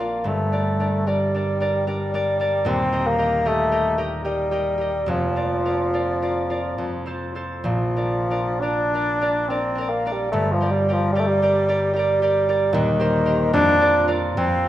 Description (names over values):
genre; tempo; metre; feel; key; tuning
classical, romantic duo for bassoon and harp; 60-77 BPM; 3/4; rubato; Bb major; A4 = 440 Hz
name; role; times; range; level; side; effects
warm bassoon; melody; 0.0-14.7 s; Eb3 to D4; -21 LUFS; equal; none
concert harp; accompaniment; 0.0-14.7 s; Eb1 to Eb5; -23 LUFS; right 1 dB; none
room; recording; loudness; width
wet recital hall reverb, RT60 1.3 s; none; -19 LUFS; side -13 dB against mid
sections
0.0-14.7 A section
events
none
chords
0.3 Gm; 2.7 Eb; 5.1 Bb/F; 6.8 F; 7.7 Bb; 10.3 Gm; 12.7 Cm7/Eb; 13.5 Bb/F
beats
| 0.26 1.08 1.88 | 2.67 3.46 4.25 | 5.08 5.95 6.79 | 7.66 8.62 9.50 | 10.33 11.15 11.96 | 12.74 13.53 14.37